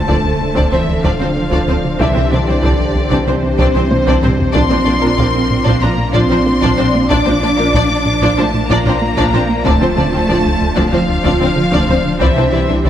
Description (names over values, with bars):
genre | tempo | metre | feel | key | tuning
cinematic, hybrid orchestral and electronic film score | 94 BPM | 4/4 | straight | D minor | A4 = 440 Hz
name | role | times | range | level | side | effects
rich symphonic violin section | melody | 0.0-12.9 s | C5 to D6 | -21 LUFS | left 4 dB | none
warm analog pad | sustained chords | 0.0-12.9 s | D3 to D5 | -20 LUFS | equal | chorus
plucky analog bass | riff | 0.0-12.9 s | C2 to Bb3 | -20 LUFS | right 1 dB | none
punchy sub bass | bass | 0.0-12.9 s | D1 to C2 | -23 LUFS | equal | none
warm symphonic cello section | bass | 0.0-12.9 s | C3 to D4 | -19 LUFS | right 1 dB | none
clear baby grand piano | texture | 0.0-12.9 s | C4 to E5 | -27 LUFS | left 1 dB | none
warm symphonic violin section | second line | 0.1-12.9 s | Bb3 to D5 | -21 LUFS | left 3 dB | none
rich symphonic viola section | accompaniment | 0.1-12.9 s | E3 to D4 | -20 LUFS | right 1 dB | none
rich symphonic double bass section | bass | 0.1-12.9 s | Bb1 to D2 | -22 LUFS | right 2 dB | none
taiko ensemble | drums | 0.1-12.9 s | none | -22 LUFS | equal | none
room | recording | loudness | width
wet concert hall reverb, RT60 2.1 s | none | -11 LUFS | side -10 dB against mid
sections
0.0-12.9 A section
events
drum fill 3.9-4.6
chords
0.0 Dm7; 2.0 Cadd9; 4.6 Bb; 9.7 Dm7; 12.2 Cadd9